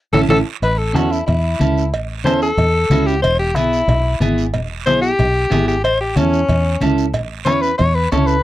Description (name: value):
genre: latin, cumbia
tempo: 184 BPM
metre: 4/4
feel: straight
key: A major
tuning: A4 = 440 Hz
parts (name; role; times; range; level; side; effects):
- bright alto saxophone; melody; 0.1-8.4 s; C#4 to C#5; -18 LUFS; left 2 dB; none
- clean electric guitar; accompaniment; 0.1-8.4 s; B3 to B4; -19 LUFS; right 3 dB; none
- fingered electric bass; bass; 0.1-8.4 s; E1 to E2; -19 LUFS; equal; none
- congas; percussion; 0.1-8.3 s; none; -21 LUFS; left 2 dB; none
- guiro; percussion; 0.1-8.4 s; none; -33 LUFS; right 12 dB; none
- timbales and cowbell; percussion; 0.1-8.3 s; none; -26 LUFS; right 5 dB; none
room: little or no reverb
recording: dry, close 1970s-style studio recording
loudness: -14 LUFS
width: side -15 dB against mid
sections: 0.6-8.4 A section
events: drum fill 0.0-0.6; band accent 0.0-0.6; alto saxophone solo 0.6-8.4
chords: 0.0 A; 3.2 E; 5.8 A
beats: 0.30 | 0.63 0.95 1.28 1.60 | 1.93 2.26 2.58 2.91 | 3.24 3.56 3.89 4.21 | 4.54 4.87 5.19 5.52 | 5.85 6.17 6.50 6.82 | 7.15 7.48 7.80 8.13